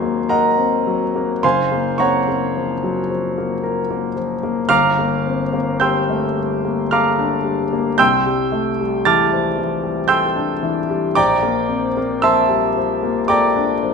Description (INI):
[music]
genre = classical, impressionist solo piano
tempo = 56 BPM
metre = 3/4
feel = rubato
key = G dorian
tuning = A4 = 440 Hz
[part]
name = clear grand piano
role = solo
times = 0.0-13.9 s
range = F#1 to A6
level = -16 LUFS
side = equal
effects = none
[sound]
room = moderate recital hall reverb, RT60 1.4 s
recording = nothing above 10.8 kHz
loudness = -16 LUFS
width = side -5 dB against mid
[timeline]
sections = 0.0-13.9 A section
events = none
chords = 0.0 Ebm6; 1.4 F#maj7; 4.7 Gmadd9; 8.0 C69; 11.2 Bbmaj7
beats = 0.30 | 1.43 2.55 3.64 | 4.71 5.82 6.91 | 8.00 9.06 10.10 | 11.17 12.24 13.31